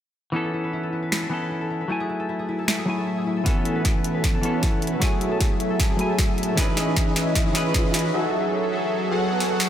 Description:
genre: future bass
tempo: 154 BPM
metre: 4/4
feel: half-time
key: F# dorian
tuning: A4 = 440 Hz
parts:
  - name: semi-hollow electric guitar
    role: accompaniment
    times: 0.3-8.1 s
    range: E3 to G#5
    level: -26 LUFS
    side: equal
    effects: sidechain pumping, dub echo
  - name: concert harp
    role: arpeggios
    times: 0.3-9.7 s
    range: D#4 to B4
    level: -32 LUFS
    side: left 4 dB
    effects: sidechain pumping, low-pass filter, dub echo
  - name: trap drum kit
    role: drums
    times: 1.1-9.7 s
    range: finger snaps, hi-hat, snare drum, toms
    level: -26 LUFS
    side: equal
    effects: high-pass filter on snare, high-pass filter on hats, high-pass filter on toms, high-pass filter on room
  - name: ethereal airy pad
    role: sustained chords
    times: 2.3-8.1 s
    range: E3 to D#6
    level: -34 LUFS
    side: equal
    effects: ensemble chorus, built-in reverb, tremolo, sidechain pumping
  - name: soft supersaw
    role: riff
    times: 3.5-9.7 s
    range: F#3 to F#5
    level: -25 LUFS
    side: equal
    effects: phaser, sidechain pumping, low-pass filter
  - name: electronic kick drum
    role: drums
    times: 3.5-7.8 s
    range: none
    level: -23 LUFS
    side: equal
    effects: none
  - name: riser and swell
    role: sound effects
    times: 5.9-9.7 s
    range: none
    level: -35 LUFS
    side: equal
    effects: none
room: light reverb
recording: none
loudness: -21 LUFS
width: side -10 dB against mid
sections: 0.3-3.5 A section; 3.5-9.7 B section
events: build-up 3.5-9.7; drum fill 3.5-8.1, 9.4; filter sweep on supersaw synth 3.5-9.7; filter sweep on harp 3.5-9.7; swell 9.1-9.7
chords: 0.3 B9sus4; 1.9 F#m9; 3.5 B9sus4; 5.0 F#m9; 6.6 C#m9; 8.1 F#m9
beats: | 0.34 0.73 1.12 1.51 | 1.90 2.29 2.68 3.07 | 3.46 3.85 4.24 4.63 | 5.02 5.41 5.80 6.19 | 6.58 6.96 7.36 7.75 | 8.13 8.52 8.91 9.30

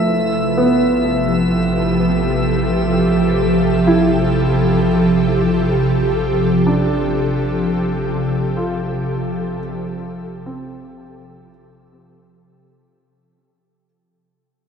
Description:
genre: ambient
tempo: 64 BPM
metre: 4/4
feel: straight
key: unclear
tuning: A4 = 441 Hz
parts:
  - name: ethereal airy pad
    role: sustained chords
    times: 0.0-13.9 s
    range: C3 to B4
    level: -16 LUFS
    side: equal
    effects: ensemble chorus, built-in reverb
  - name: felt-muted upright piano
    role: arpeggios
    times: 0.0-13.9 s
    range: A3 to F4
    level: -22 LUFS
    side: right 1 dB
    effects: ping-pong delay
  - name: round analog bass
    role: bass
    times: 0.0-13.8 s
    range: A1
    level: -29 LUFS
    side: left 1 dB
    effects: none
  - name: drifting glass-harmonics texture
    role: texture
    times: 0.0-13.9 s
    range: E5 to E6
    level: -28 LUFS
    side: equal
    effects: chorus, built-in reverb
room: wet concert hall reverb, RT60 2.1 s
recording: dark, warm production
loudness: -15 LUFS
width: side -7 dB against mid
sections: 0.0-13.8 A section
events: fade-out on analog synth bass 0.0-13.8; fade-out on synth texture 0.0-13.8; fade-out 3.7-13.8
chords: 0.0 F/A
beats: 0.57 1.52 | 2.46 3.40 4.33 5.26 | 6.20 7.14 8.09 9.04 | 9.99 10.94 11.90 12.88

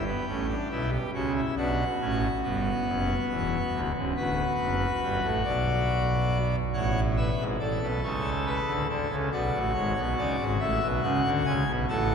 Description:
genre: classical, baroque-style 4-part fugue for pipe organ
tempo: 46 BPM (dotted quarters)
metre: 12/8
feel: straight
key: B minor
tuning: A4 = 440 Hz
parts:
  - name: pipe organ, full organ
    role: solo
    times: 0.0-12.1 s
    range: C#1 to G#5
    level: -25 LUFS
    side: equal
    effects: none
room: wet cathedral reverb, RT60 6.0 s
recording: heard from further back in the room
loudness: -25 LUFS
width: side -6 dB against mid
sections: 0.0-12.1 A section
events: none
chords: 0.0 Em; 1.6 Bm; 4.2 Bm/D; 6.7 F#m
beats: 0.27 | 1.57 2.87 4.16 5.44 | 6.74 8.03 9.32 10.60 | 11.88

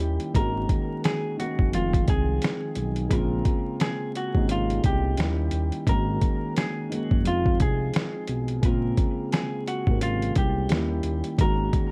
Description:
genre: lo-fi hip hop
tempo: 87 BPM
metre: 4/4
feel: swing 59% on 16ths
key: Bb minor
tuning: A4 = 443 Hz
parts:
  - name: electric guitar through a small old amp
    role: melody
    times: 0.0-11.9 s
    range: F4 to Bb4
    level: -34 LUFS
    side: equal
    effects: low-pass filter, tape echo
  - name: felt-muted upright piano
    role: accompaniment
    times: 0.0-11.9 s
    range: C3 to Bb4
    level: -32 LUFS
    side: equal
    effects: cassette tape, low-pass filter
  - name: smooth gliding synth bass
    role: bass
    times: 0.0-11.7 s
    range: F1 to Eb2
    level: -29 LUFS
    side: equal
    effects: none
  - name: dusty soul sampler-style drum kit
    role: drums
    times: 0.2-11.9 s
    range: finger snaps, hi-hat, kick drum, snare drum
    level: -27 LUFS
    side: equal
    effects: overdrive
room: light reverb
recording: vinyl crackle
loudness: -25 LUFS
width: mono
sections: 0.0-11.9 A section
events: none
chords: 0.3 Ab9sus4; 1.7 Fm7; 3.1 Bbm9; 5.2 Eb7b9; 5.9 Ab9sus4; 7.2 Fm7; 8.6 Bbm9; 10.7 Eb7b9; 11.4 Ab9sus4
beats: | 0.35 1.04 1.73 2.42 | 3.11 3.80 4.49 5.18 | 5.87 6.56 7.25 7.93 | 8.62 9.31 10.00 10.69 | 11.38

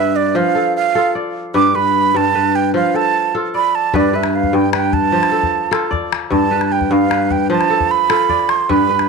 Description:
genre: west african traditional, West African string and xylophone music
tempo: 101 BPM (dotted quarters)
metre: 12/8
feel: straight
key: unclear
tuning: A4 = 440 Hz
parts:
  - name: breathy concert flute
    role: melody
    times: 0.0-9.1 s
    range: D5 to D6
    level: -16 LUFS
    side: right 8 dB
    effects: none
  - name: kora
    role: arpeggios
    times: 0.0-9.1 s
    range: G2 to D5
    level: -16 LUFS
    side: left 2 dB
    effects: none
  - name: calabash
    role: percussion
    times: 3.9-9.1 s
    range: none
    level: -23 LUFS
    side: left 8 dB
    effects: none
room: light reverb, small room reverb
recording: 1960s-style stereo with parts hard left and right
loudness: -13 LUFS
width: side -4 dB against mid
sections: 0.0-9.1 A section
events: flute solo 0.0-9.1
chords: 0.4 F; 1.5 G; 2.7 F; 3.9 G; 5.1 F; 6.3 G; 7.5 F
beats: 0.35 0.95 | 1.54 2.14 2.74 3.33 | 3.93 4.52 5.12 5.71 | 6.31 6.90 7.50 8.09 | 8.69

